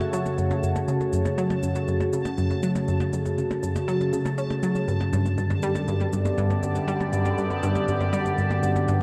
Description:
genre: ambient, sequencer-driven space music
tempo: 120 BPM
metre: 4/4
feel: straight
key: F# phrygian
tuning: A4 = 440 Hz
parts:
  - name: sweeping resonant pad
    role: sustained chords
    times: 0.0-9.0 s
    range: F#2 to D5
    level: -28 LUFS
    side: equal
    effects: chorus, phaser
  - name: analog pluck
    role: riff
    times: 0.0-9.0 s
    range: F#2 to C#4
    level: -28 LUFS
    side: equal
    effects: chorus, delay
  - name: percussion blips and shaker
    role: percussion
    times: 0.0-9.0 s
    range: none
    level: -40 LUFS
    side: equal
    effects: delay
  - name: bubbling stepped-filter texture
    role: texture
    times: 0.0-9.0 s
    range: A5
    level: -41 LUFS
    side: equal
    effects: chorus, built-in reverb
room: wet plate reverb, RT60 3.3 s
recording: dark, warm production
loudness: -25 LUFS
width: mono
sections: 0.0-9.0 A section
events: filter sweep on synth arpeggio sound 0.0-9.0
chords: 0.0 F#m; 4.9 G/F#

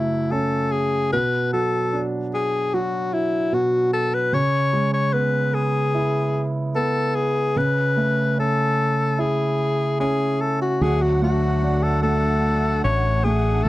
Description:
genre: pop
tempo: 74 BPM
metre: 4/4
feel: straight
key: unclear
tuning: A4 = 440 Hz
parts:
  - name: bright alto saxophone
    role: melody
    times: 0.0-13.7 s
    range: E4 to C#5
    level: -22 LUFS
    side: left 3 dB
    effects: slapback echo
  - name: clear concert grand piano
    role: accompaniment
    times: 0.0-13.7 s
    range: F#2 to E4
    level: -23 LUFS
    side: right 2 dB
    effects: none
  - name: musette accordion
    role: sustained chords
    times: 10.8-13.7 s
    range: A3 to F#5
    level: -31 LUFS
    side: right 2 dB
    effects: none
  - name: fretless electric bass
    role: bass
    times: 10.8-13.7 s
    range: A1 to D2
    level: -21 LUFS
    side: equal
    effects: none
room: little or no reverb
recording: dry, close 1970s-style studio recording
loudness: -19 LUFS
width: side -16 dB against mid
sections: 0.0-10.8 A section; 10.8-13.7 B section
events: none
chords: 0.0 F#m; 1.1 Bm; 4.3 C#m7; 7.6 Amaj7/C#; 10.8 D

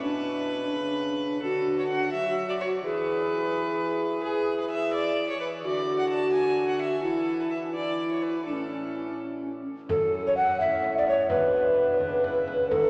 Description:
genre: classical, renaissance-style consort dance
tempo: 85 BPM (dotted quarters)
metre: 6/8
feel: straight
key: unclear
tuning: A4 = 443 Hz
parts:
  - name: mellow hollow tenor recorder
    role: melody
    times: 0.0-12.9 s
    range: C#4 to F#5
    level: -28 LUFS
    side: equal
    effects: none
  - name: warm violin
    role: second line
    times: 0.0-12.9 s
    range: C#4 to A5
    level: -34 LUFS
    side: equal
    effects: none
  - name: clear trombone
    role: bass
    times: 0.0-12.9 s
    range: F#2 to F#3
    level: -38 LUFS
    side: equal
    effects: none
  - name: frame drum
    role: percussion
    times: 9.9-12.9 s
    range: none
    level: -42 LUFS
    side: equal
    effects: none
room: wet cathedral reverb, RT60 5.6 s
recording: none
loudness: -27 LUFS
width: mono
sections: 0.0-9.9 A section; 9.9-12.9 A section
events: none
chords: 0.0 Bm; 1.4 D; 2.8 E; 5.6 D; 7.0 Esus4; 8.5 A; 9.9 F#m; 11.3 Bm

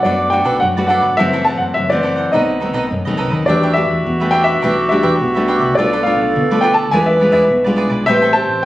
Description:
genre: samba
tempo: 105 BPM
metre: 4/4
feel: straight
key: unclear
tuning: A4 = 441 Hz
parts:
  - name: warm concert grand piano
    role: melody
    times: 0.0-8.7 s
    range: D5 to A5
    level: -17 LUFS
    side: left 1 dB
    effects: none
  - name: cavaquinho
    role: accompaniment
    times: 0.0-8.7 s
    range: D4 to G5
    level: -21 LUFS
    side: right 3 dB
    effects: none
  - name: nylon-string guitar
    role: accompaniment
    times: 0.0-8.7 s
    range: F#2 to B4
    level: -18 LUFS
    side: left 1 dB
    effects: none
  - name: hollow-body short-scale fingered electric bass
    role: bass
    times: 0.0-8.6 s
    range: F#1 to F#2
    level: -24 LUFS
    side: equal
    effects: none
  - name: dark clarinet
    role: second line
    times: 3.5-8.7 s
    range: F#4 to C5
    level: -17 LUFS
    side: right 1 dB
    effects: none
room: moderate large studio reverb, RT60 1.2 s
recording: recorded on a phone in the room, studio reverb, compression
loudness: -12 LUFS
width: side -15 dB against mid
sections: 0.0-8.7 A section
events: none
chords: 0.0 Bm7; 1.2 F#m7b5; 2.3 B7b9; 3.5 Em11; 5.8 Bm7b5; 6.9 E7b9; 8.1 Am9

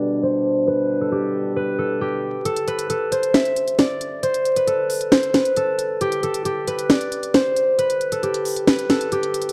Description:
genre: hip hop, trap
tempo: 135 BPM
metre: 4/4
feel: half-time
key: unclear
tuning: A4 = 440 Hz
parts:
  - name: concert harp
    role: melody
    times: 0.0-9.5 s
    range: G4 to E5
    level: -23 LUFS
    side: equal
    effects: none
  - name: mellow French horn section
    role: sustained chords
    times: 0.0-2.4 s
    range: B2 to D4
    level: -26 LUFS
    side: equal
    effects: none
  - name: trap drum kit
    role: drums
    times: 2.5-9.5 s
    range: hi-hat, snare drum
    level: -22 LUFS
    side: equal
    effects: none
room: light reverb, small room ambience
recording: dark, warm production, vinyl crackle, low-pass filter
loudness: -21 LUFS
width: mono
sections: 0.0-2.5 A section; 2.5-9.5 B section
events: filter sweep 0.0-2.5; kick muted 2.5-9.5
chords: 0.0 G; 2.5 N.C.

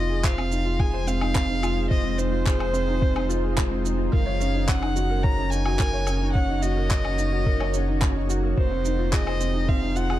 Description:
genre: piano and strings electronica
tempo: 108 BPM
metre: 4/4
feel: straight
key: unclear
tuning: A4 = 438 Hz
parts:
  - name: dark violin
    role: melody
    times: 0.0-10.2 s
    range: C5 to Bb5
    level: -30 LUFS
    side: equal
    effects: tape echo
  - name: granular cloud pad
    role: sustained chords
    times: 0.0-10.2 s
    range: Ab3 to Db5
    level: -33 LUFS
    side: right 1 dB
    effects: built-in reverb
  - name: felt-muted upright piano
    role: riff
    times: 0.0-10.2 s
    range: C4 to Db5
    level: -28 LUFS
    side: equal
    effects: tape echo
  - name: warm sub bass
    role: bass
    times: 0.0-10.2 s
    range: F1 to Gb1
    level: -26 LUFS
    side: equal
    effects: sidechain pumping
  - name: electronic handclaps, woodblock and shaker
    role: drums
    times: 0.2-10.2 s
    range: none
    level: -31 LUFS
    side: left 1 dB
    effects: none
  - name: electronic kick drum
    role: drums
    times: 0.2-9.8 s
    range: none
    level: -22 LUFS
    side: equal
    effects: none
room: digital ambience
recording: dark, warm production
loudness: -21 LUFS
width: side -14 dB against mid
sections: 0.0-10.2 A section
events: none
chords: 0.0 Fm7; 4.1 Ebm7/Gb; 8.6 Fm7

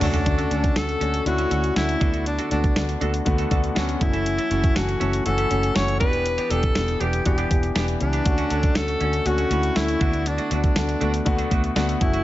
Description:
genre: 1980s-style pop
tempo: 120 BPM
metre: 4/4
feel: straight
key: D major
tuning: A4 = 440 Hz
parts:
  - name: breathy alto saxophone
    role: melody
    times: 0.0-12.2 s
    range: D4 to C#5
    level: -25 LUFS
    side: left 1 dB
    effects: digital delay
  - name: warm grand piano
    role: accompaniment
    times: 0.0-12.2 s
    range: D3 to A4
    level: -26 LUFS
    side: left 3 dB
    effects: none
  - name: twelve-string electric guitar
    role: riff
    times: 0.0-12.2 s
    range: A3 to A4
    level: -32 LUFS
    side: right 7 dB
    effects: wide subtle chorus, digital delay
  - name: vintage muted fingered electric bass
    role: bass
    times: 0.0-12.2 s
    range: E1 to D2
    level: -25 LUFS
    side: right 1 dB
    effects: none
  - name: clean 12-bit digital drum machine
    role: drums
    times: 0.0-12.2 s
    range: hi-hat, kick drum, snare drum, toms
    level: -24 LUFS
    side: right 1 dB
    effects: none
room: light reverb, small room ambience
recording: nothing above 7.8 kHz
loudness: -19 LUFS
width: side -15 dB against mid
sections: 0.3-12.2 A section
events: drum fill 0.0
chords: 0.3 Dmaj7; 2.0 Bm7/D; 4.0 F#m7; 6.0 Em7; 8.3 Dmaj7; 10.0 Bm7/D

